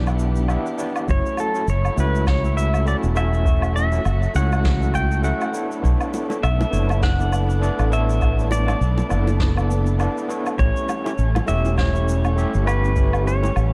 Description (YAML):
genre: sunset chillout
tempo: 101 BPM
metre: 4/4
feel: swing 57% on 16ths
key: unclear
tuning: A4 = 435 Hz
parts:
  - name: overdriven tine electric piano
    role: accompaniment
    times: 0.0-13.5 s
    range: A3 to E5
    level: -29 LUFS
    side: equal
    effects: fast tremolo, delay
  - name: muted studio string section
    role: sustained chords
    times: 0.0-13.7 s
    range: E3 to F#5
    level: -34 LUFS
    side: equal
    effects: none
  - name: mellow fretless electric bass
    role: bass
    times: 0.0-13.7 s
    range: E1 to C#2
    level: -22 LUFS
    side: equal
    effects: analog chorus
  - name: shaker, woodblock and snare drum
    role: drums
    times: 0.1-13.7 s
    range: none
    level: -33 LUFS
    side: equal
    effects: none
  - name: pedal steel guitar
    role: melody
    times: 1.1-13.7 s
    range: A4 to G5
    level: -29 LUFS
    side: equal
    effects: delay
  - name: electronic kick drum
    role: drums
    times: 1.1-13.1 s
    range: none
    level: -24 LUFS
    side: equal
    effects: none
  - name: bongos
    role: percussion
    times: 6.1-13.5 s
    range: none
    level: -32 LUFS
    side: equal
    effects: none
room: light reverb, small room ambience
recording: dark, warm production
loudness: -20 LUFS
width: mono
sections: 0.0-13.7 A section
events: none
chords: 0.0 Em7; 1.1 F#m7; 5.5 Bm11; 10.6 A7